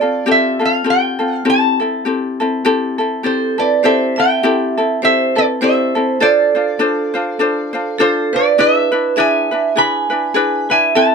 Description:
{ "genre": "Hawaiian", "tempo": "101 BPM", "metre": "4/4", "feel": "swing 58% on 8ths", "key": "C major", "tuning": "A4 = 440 Hz", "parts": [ { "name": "lap resonator guitar", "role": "melody", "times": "0.0-11.1 s", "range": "C5 to B5", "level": "-16 LUFS", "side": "right 2 dB", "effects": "none" }, { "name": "ukulele", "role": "accompaniment", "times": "0.0-11.1 s", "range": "C4 to C5", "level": "-16 LUFS", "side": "left 3 dB", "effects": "none" }, { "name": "vibraphone with hard mallets", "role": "second line", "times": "3.2-11.1 s", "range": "A4 to G#5", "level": "-19 LUFS", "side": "right 6 dB", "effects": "none" } ], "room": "light reverb", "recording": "close, detailed microphones", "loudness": "-13 LUFS", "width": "side -5 dB against mid", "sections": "0.0-3.8 A section; 3.8-11.1 B section", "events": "none", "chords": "0.0 G9sus4; 1.5 C6; 6.2 Dm7; 8.6 E7" }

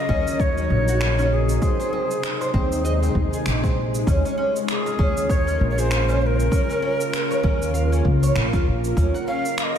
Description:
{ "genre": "organic downtempo", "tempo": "98 BPM", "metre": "4/4", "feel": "swing 58% on 16ths", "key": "Eb dorian", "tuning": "A4 = 440 Hz", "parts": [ { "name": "breathy bright Native American-style cedar flute", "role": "melody", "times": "0.0-9.8 s", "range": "Ab4 to F5", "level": "-27 LUFS", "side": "left 1 dB", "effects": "digital delay, slapback echo" }, { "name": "bowed-like drone", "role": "sustained chords", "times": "0.0-9.8 s", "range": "C3 to Bb4", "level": "-27 LUFS", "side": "left 1 dB", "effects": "built-in reverb, sidechain pumping" }, { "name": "oud", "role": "arpeggios", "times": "0.0-9.8 s", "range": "C4 to Gb5", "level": "-27 LUFS", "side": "right 1 dB", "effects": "digital delay, slapback echo" }, { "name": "upright bass", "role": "bass", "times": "0.1-9.1 s", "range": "Bb1 to Eb2", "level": "-22 LUFS", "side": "equal", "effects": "sidechain pumping" }, { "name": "electronic kick drum", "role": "drums", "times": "0.1-9.1 s", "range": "none", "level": "-23 LUFS", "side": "equal", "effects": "overdrive" }, { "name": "electronic cabasa and finger snaps", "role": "drums", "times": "0.3-9.8 s", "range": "none", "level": "-30 LUFS", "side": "right 1 dB", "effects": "overdrive" } ], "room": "moderate concert hall reverb, RT60 2.3 s", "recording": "big arena sound", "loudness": "-19 LUFS", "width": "side -8 dB against mid", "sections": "0.0-9.8 A section", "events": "none", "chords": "0.0 Ebm7; 1.6 Ab; 4.1 Db6/Eb; 6.5 Bbm; 9.0 Ebm7" }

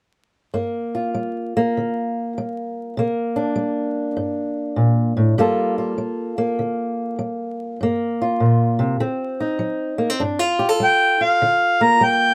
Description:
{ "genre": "acoustic country blues, solo or duo", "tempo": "99 BPM", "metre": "4/4", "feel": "swing 65% on 8ths", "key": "G minor", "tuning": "A4 = 440 Hz", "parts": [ { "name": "fingerpicked old ladder-braced acoustic guitar", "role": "accompaniment", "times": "0.5-12.3 s", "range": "G2 to A4", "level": "-22 LUFS", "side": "equal", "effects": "none" }, { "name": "mellow harmonica", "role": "melody", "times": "10.8-12.3 s", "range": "F5 to Bb5", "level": "-17 LUFS", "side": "equal", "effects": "plate reverb" } ], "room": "moderate booth ambience, RT60 0.2 s", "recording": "vinyl crackle", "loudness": "-21 LUFS", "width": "mono", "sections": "0.5-10.2 A section; 10.2-12.3 B section", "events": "none", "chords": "0.5 Gm7; 3.0 Csus2; 5.4 Gm9; 9.0 D7b9; 10.2 Gm9" }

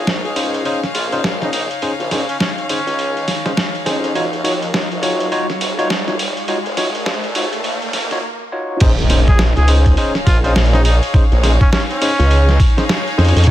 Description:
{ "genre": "glitch hop", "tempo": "103 BPM", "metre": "4/4", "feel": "swing 61% on 16ths", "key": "Bb minor", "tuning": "A4 = 440 Hz", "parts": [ { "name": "clear trumpet", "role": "melody", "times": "0.0-3.4, 9.3-12.7 s", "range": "Db4 to Ab4", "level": "-24 LUFS", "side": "equal", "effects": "low-pass filter, digital delay" }, { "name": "formant-sweep wobble bass", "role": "bass", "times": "0.0-13.5 s", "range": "Eb1 to F2", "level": "-16 LUFS", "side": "equal", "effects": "chorus, overdrive, high-pass filter" }, { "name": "riser and impact", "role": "sound effects", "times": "0.0-11.1 s", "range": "none", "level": "-26 LUFS", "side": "equal", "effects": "none" }, { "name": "rich chamber string section", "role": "texture", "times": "0.0-13.5 s", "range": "Eb4 to F5", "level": "-25 LUFS", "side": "left 2 dB", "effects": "sidechain pumping" }, { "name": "boom bap sampler-style drum kit", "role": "drums", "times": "0.1-13.5 s", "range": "crash cymbal, hi-hat, snare drum", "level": "-21 LUFS", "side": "right 1 dB", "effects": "none" }, { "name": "overdriven tine electric piano", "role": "stabs", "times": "0.4-13.5 s", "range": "Db4 to Db5", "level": "-22 LUFS", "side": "left 1 dB", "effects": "vintage 12-bit sampler grit, sidechain pumping, low-pass filter, digital delay" }, { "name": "electronic kick drum", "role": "drums", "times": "8.8-13.5 s", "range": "none", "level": "-13 LUFS", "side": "equal", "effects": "none" } ], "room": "little or no reverb", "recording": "high-pass filter", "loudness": "-14 LUFS", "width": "side -13 dB against mid", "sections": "0.0-8.8 A section; 8.8-13.5 B section", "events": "build-up 0.0-8.8; riser 0.0-8.2; break 8.2-8.8; drop 8.8-13.5; impact 8.8-11.1", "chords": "0.0 Bbm11; 4.2 Ebm9; 8.8 Bbm11" }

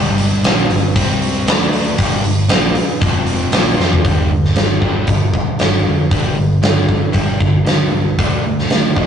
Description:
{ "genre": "hard rock", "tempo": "116 BPM", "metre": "4/4", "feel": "straight", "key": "G minor", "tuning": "A4 = 442 Hz", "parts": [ { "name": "overdriven electric guitar", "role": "riff", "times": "0.0-9.1 s", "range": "F2 to F4", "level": "-18 LUFS", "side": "right 1 dB", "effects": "none" }, { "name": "overdriven picked electric bass", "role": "bass", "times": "0.0-9.1 s", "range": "F1 to F2", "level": "-21 LUFS", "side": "equal", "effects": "none" }, { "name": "big rock drum kit", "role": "drums", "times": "0.2-9.1 s", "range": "hi-hat, kick drum, snare drum, toms", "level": "-14 LUFS", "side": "equal", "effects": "none" } ], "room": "moderate booth ambience, RT60 0.2 s", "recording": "rough rehearsal-room recording, nothing above 10.6 kHz", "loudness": "-12 LUFS", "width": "side -8 dB against mid", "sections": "0.0-4.1 A section; 4.1-9.1 B section", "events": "drum fill 3.8", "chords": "0.0 Gm; 1.0 C5; 1.5 D5; 2.0 Gm; 3.0 F5; 3.5 Bbsus2; 4.1 G5; 8.2 D5" }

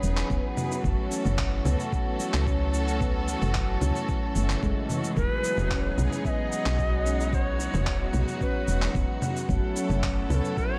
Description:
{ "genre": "organic downtempo", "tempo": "111 BPM", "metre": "4/4", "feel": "straight", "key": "F# dorian", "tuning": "A4 = 442 Hz", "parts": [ { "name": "rich studio string section", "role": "sustained chords", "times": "0.0-10.8 s", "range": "E3 to B4", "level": "-36 LUFS", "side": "equal", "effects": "sidechain pumping" }, { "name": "woody FM bass", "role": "bass", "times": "0.0-10.4 s", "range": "E1 to C#2", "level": "-29 LUFS", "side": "equal", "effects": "sidechain pumping" }, { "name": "electronic shaker, handclaps and congas", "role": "drums", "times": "0.0-10.7 s", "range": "none", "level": "-35 LUFS", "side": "equal", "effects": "none" }, { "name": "handpan", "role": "arpeggios", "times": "0.3-10.7 s", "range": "C#3 to C#4", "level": "-34 LUFS", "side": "equal", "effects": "diffuse ambient delay" }, { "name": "electronic kick drum", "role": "drums", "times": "0.3-10.7 s", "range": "none", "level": "-32 LUFS", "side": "equal", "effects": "none" }, { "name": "Native American-style cedar flute", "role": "melody", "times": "5.2-10.8 s", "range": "A4 to E5", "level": "-34 LUFS", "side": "equal", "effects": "diffuse ambient delay" }, { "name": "drifting glass-harmonics texture", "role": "texture", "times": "7.0-10.8 s", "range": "F#5", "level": "-45 LUFS", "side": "equal", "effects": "chorus, built-in reverb" } ], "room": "light reverb, small room ambience", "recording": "none", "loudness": "-27 LUFS", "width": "mono", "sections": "0.0-10.8 A section", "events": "none", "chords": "0.0 Emaj7; 0.8 F#m7; 5.2 Emaj7; 9.5 F#m7" }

